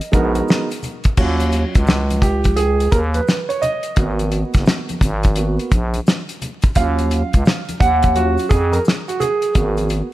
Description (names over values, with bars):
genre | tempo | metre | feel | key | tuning
hip hop, jazz-hop | 86 BPM | 4/4 | swing 65% on 16ths | Eb minor | A4 = 440 Hz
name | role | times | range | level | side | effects
concert flute | melody | 0.0-0.5 s | Eb5 | -38 LUFS | right 1 dB | none
cloth-damped thuddy drum kit | drums | 0.0-10.1 s | crash cymbal, hi-hat, kick drum, snare drum | -17 LUFS | equal | none
maracas and congas | percussion | 0.0-10.1 s | none | -33 LUFS | left 1 dB | none
dark baby grand piano | accompaniment | 0.1-10.1 s | Gb3 to Gb5 | -20 LUFS | right 3 dB | none
growling FM bass | bass | 0.1-10.0 s | Gb1 to F2 | -19 LUFS | equal | none
room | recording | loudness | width
light reverb | vinyl crackle, lossy compression artefacts | -15 LUFS | side -15 dB against mid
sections
0.0-1.2 A section; 1.2-10.1 B section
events
grand piano solo 1.2-10.1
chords
0.0 Abm7; 1.2 Ebm9; 4.0 Abm7; 6.8 Ebm9; 9.5 Abm7